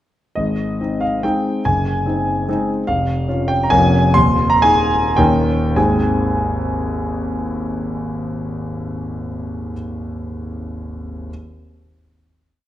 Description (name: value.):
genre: classical, romantic triple-time dance for piano with dotted rhythms.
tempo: 94-158 BPM.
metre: 3/4.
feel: rubato.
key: Ab major.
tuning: A4 = 441 Hz.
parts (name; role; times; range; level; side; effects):
warm concert grand piano; solo; 0.4-11.3 s; Eb1 to C6; -16 LUFS; equal; none.
room: wet recital hall reverb, RT60 1.4 s.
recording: dark, warm production.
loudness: -16 LUFS.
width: side -12 dB against mid.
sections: 0.4-5.8 A section; 5.8-9.1 final chord.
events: slowing down 2.3-5.8.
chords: 0.4 Ab; 1.6 Ab7/Gb; 2.9 Db/F; 3.7 Bbm7/F; 4.2 Ab5/Eb; 5.2 Eb7; 5.8 Ab.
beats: | 0.36 0.80 1.23 | 1.63 2.05 2.48 | 2.86 3.27 3.71 | 4.15 4.62 5.17 | 5.77 6.33 6.90 | 7.42 7.98 8.55.